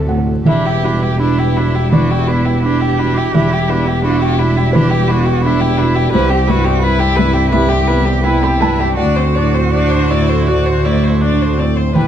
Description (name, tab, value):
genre	neoclassical piano and strings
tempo	77-87 BPM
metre	4/4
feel	rubato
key	E minor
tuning	A4 = 440 Hz
part	rich violin	melody	0.0-12.1 s	E4 to D5	-19 LUFS	left 5 dB	none
part	rich cello	second line	0.0-12.1 s	C3 to G4	-22 LUFS	right 5 dB	none
part	felt-muted upright piano	accompaniment	0.0-12.1 s	C2 to B5	-16 LUFS	right 2 dB	none
part	phased analog pad	sustained chords	0.0-12.1 s	G3 to D5	-27 LUFS	right 1 dB	phaser, chorus
part	warm double bass	bass	0.0-12.1 s	E1 to D2	-16 LUFS	equal	none
part	rich viola	accompaniment	0.5-12.1 s	C4 to F#4	-24 LUFS	right 4 dB	none
room	light reverb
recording	dark, warm production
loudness	-11 LUFS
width	side -9 dB against mid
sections	0.5-12.1 A section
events	none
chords	0.5 Em7; 6.1 Cmaj7; 9.0 D7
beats	| 0.47 1.20 1.93 2.64 | 3.35 4.04 4.74 5.44 | 6.13 6.83 7.53 8.25 | 8.99 9.74 10.48 11.22 | 11.95